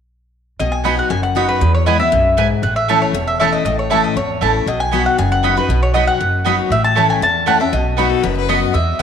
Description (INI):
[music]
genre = bluegrass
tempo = 236 BPM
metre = 4/4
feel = straight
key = B mixolydian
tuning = A4 = 441 Hz
[part]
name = mandolin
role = melody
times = 0.6-9.0 s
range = B4 to A5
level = -18 LUFS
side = equal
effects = none
[part]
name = picked steel-string acoustic guitar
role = accompaniment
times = 0.6-9.0 s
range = E2 to F#4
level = -19 LUFS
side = left 7 dB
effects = none
[part]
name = upright bass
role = bass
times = 0.6-9.0 s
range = E1 to E2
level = -20 LUFS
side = right 1 dB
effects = none
[part]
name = mandolin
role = stabs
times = 0.8-9.0 s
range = A3 to B5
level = -20 LUFS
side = right 9 dB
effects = none
[part]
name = clear fiddle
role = second line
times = 8.0-8.7 s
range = F#4 to D#5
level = -22 LUFS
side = left 9 dB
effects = none
[sound]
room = moderate echo chamber reverb, RT60 2.0 s, studio reverb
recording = 1960s-style stereo with parts hard left and right, faint mains hum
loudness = -13 LUFS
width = side -8 dB against mid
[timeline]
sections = 0.6-8.7 A section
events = none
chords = 0.6 B; 1.6 E; 2.6 A; 4.7 B; 6.7 A; 7.7 B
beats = | 0.60 0.85 1.11 1.36 | 1.62 1.87 2.13 2.38 | 2.64 2.89 3.15 3.40 | 3.65 3.91 4.16 4.42 | 4.67 4.93 5.18 5.44 | 5.69 5.95 6.20 6.45 | 6.71 6.96 7.22 7.47 | 7.73 7.98 8.23 8.49 | 8.74 9.00